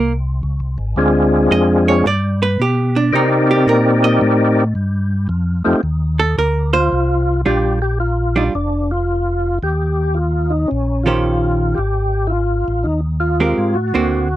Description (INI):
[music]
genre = jazz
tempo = 111 BPM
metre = 4/4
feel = swing 67% on 8ths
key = Bb major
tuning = A4 = 440 Hz
[part]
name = archtop guitar, miked and amplified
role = accompaniment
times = 0.0-14.3 s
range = D3 to Eb5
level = -18 LUFS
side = right 4 dB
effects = none
[part]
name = tonewheel organ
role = bass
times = 0.0-14.4 s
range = F1 to C3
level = -18 LUFS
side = equal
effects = overdrive, chorus vibrato, slow rotary speaker
[part]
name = overdriven tonewheel organ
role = melody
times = 1.0-14.4 s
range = Ab3 to D5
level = -16 LUFS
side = left 1 dB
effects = slow rotary speaker, chorus vibrato
[sound]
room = light reverb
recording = dry, close 1970s-style studio recording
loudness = -14 LUFS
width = side -14 dB against mid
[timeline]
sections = 0.0-7.5 A section; 7.5-14.4 B section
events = hollow-body jazz guitar solo 0.0-7.5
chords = 0.0 Db5; 1.0 Dm7b5; 2.1 G; 3.1 Cm7; 5.3 F7(no3); 7.5 Bb6; 9.6 Eb13; 11.8 Abmaj9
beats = 0.43 | 0.97 1.51 2.06 2.60 | 3.13 3.67 4.21 4.75 | 5.29 5.83 6.37 6.91 | 7.45 8.00 8.54 9.08 | 9.62 10.16 10.70 11.24 | 11.78 12.32 12.87 13.41 | 13.95